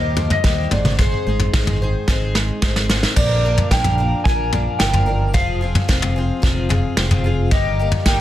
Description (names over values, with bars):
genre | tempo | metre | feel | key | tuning
indie folk with a building arrangement | 110 BPM | 4/4 | straight | unclear | A4 = 441 Hz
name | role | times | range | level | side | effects
mellow electric guitar | melody | 0.0-8.2 s | C5 to Ab5 | -23 LUFS | equal | harmonic tremolo
fingerpicked steel-string acoustic guitar | accompaniment | 0.0-8.2 s | G2 to Ab4 | -28 LUFS | left 2 dB | none
picked twelve-string acoustic guitar | accompaniment | 0.0-8.2 s | G2 to C5 | -27 LUFS | left 3 dB | none
fingered electric bass | bass | 0.0-8.2 s | F1 to Eb2 | -21 LUFS | equal | none
vintage brush drum kit | drums | 0.2-8.2 s | crash cymbal, kick drum, snare drum, toms | -18 LUFS | equal | none
room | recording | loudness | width
light reverb, small room ambience | dense, heavily limited modern master | -15 LUFS | side -13 dB against mid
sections
0.0-3.2 A section; 3.2-8.2 B section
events
drum fill 2.1-3.2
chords
0.0 Eb6; 0.7 Ab; 3.2 Bb; 5.3 Fm; 7.5 Eb/G